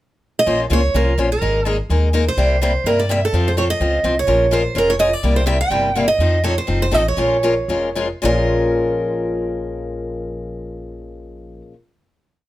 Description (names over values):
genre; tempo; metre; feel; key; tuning
acoustic string swing (jazz manouche); 212-252 BPM; 4/4; swing 55% on 8ths; Bb minor; A4 = 440 Hz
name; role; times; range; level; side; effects
picked steel-string acoustic guitar; melody; 0.4-11.6 s; A4 to G5; -20 LUFS; right 2 dB; none
picked steel-string acoustic guitar; accompaniment; 0.5-11.8 s; Bb2 to C5; -20 LUFS; left 2 dB; none
upright bass; bass; 0.5-11.6 s; F1 to G2; -21 LUFS; equal; none
room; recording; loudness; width
light reverb; none; -15 LUFS; side -15 dB against mid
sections
0.0-0.5 pickup bar; 0.5-8.2 A section; 8.2-10.5 final chord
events
slowing down 6.2-8.2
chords
0.5 Bbmadd9; 1.4 Absus2; 2.4 C7; 3.3 F; 4.3 Bbm7; 5.2 C7; 6.2 F7; 7.2 Bbm7